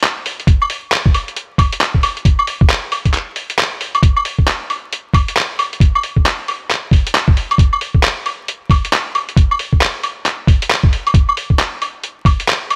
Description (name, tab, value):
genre	future garage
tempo	135 BPM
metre	4/4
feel	swing 62% on 16ths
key	none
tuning	none
part	lo-fi sampler-style drum kit	drums	0.0-12.8 s	claves, handclaps, hi-hat	-19 LUFS	equal	none
part	electronic kick drum	drums	0.5-12.4 s	none	-14 LUFS	equal	none
room	little or no reverb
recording	vinyl crackle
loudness	-15 LUFS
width	mono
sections	0.0-4.0 A section; 4.0-12.8 A section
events	none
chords	none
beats	0.03 | 0.47 0.92 1.36 1.81 | 2.25 2.70 3.14 3.59 | 4.03 4.47 4.92 5.36 | 5.81 6.25 6.70 7.14 | 7.59 8.03 8.47 8.92 | 9.36 9.81 10.25 10.70 | 11.14 11.59 12.03 12.47